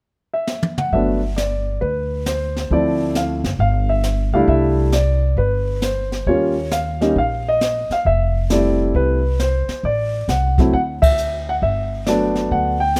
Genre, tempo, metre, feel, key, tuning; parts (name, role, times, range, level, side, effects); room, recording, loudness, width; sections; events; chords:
jazz piano trio; 135 BPM; 4/4; swing 66% on 8ths; G major; A4 = 441 Hz
warm concert grand piano; melody; 0.3-13.0 s; F3 to G5; -21 LUFS; equal
jazz brush drum kit; drums; 0.5-13.0 s; brushed snare drum, hi-hat, kick drum, ride cymbal, snare drum, toms; -25 LUFS; equal
upright bass; bass; 0.9-13.0 s; F1 to Eb2; -23 LUFS; equal
light reverb, small room ambience; rough home demo mix; -19 LUFS; mono
0.9-13.0 A section
drum fill 0.5-0.9; band accent 11.0
0.0 N.C.; 0.9 G; 2.7 Dm7; 3.6 G5; 4.5 C6; 6.3 Eb9; 8.1 Fmaj7; 9.8 Am; 10.7 Dsus2; 11.6 Gmaj7